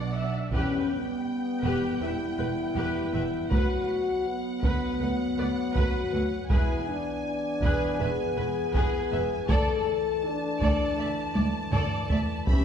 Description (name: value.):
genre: cinematic, epic orchestral film score.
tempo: 80 BPM.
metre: 4/4.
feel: straight.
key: unclear.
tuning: A4 = 439 Hz.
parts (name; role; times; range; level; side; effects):
warm symphonic violin section; melody; 0.0-12.6 s; F#5 to B5; -38 LUFS; left 2 dB; none.
warm symphonic violin section; second line; 0.0-12.6 s; G4 to F#5; -38 LUFS; left 1 dB; none.
warm symphonic viola section; accompaniment; 0.0-12.6 s; G4 to E5; -35 LUFS; right 2 dB; none.
mellow French horn section; sustained chords; 0.0-12.6 s; B3 to A4; -30 LUFS; left 3 dB; none.
rich symphonic cello section; bass; 0.0-12.6 s; D2 to B2; -35 LUFS; right 2 dB; none.
warm symphonic double bass section; bass; 0.0-12.6 s; E1 to D2; -34 LUFS; right 2 dB; none.
warm trombone section; sustained chords; 0.5-12.6 s; E3 to B3; -36 LUFS; right 3 dB; none.
solo taiko drums; drums; 0.5-12.6 s; none; -28 LUFS; equal; none.
room: wet scoring stage reverb, RT60 1.6 s.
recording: heard from further back in the room.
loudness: -25 LUFS.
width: side -8 dB against mid.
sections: 0.5-12.6 A section.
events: drum fill 11.4-12.5.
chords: 0.0 Bm; 0.5 Em; 3.5 Bm/D; 6.5 E; 9.5 Dsus2.